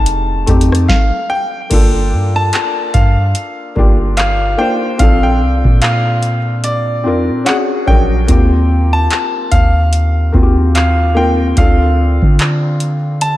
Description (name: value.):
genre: contemporary R&B.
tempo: 73 BPM.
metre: 4/4.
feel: swing 58% on 16ths.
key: G minor.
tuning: A4 = 439 Hz.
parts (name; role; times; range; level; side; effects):
bright grand piano; melody; 0.0-13.4 s; D5 to A5; -18 LUFS; left 1 dB; analog delay.
felt-muted upright piano; accompaniment; 0.0-13.4 s; F#3 to C5; -18 LUFS; left 2 dB; none.
soft 808-style bass; bass; 0.0-13.4 s; F1 to D3; -14 LUFS; equal; none.
booming analog drum machine; drums; 0.1-13.4 s; crash cymbal, handclaps, hi-hat, kick drum, rim click, snare drum; -14 LUFS; equal; none.
room: moderate plate reverb, RT60 2.8 s.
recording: dreamy mix soaked in reverb.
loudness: -10 LUFS.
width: side -15 dB against mid.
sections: 0.0-1.7 A section; 1.7-13.4 B section.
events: stop 0.9-1.7.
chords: 0.0 F7; 1.7 Gm9; 5.0 Bbmaj9; 7.5 Bb7alt; 8.3 Eb69; 11.6 Dm7.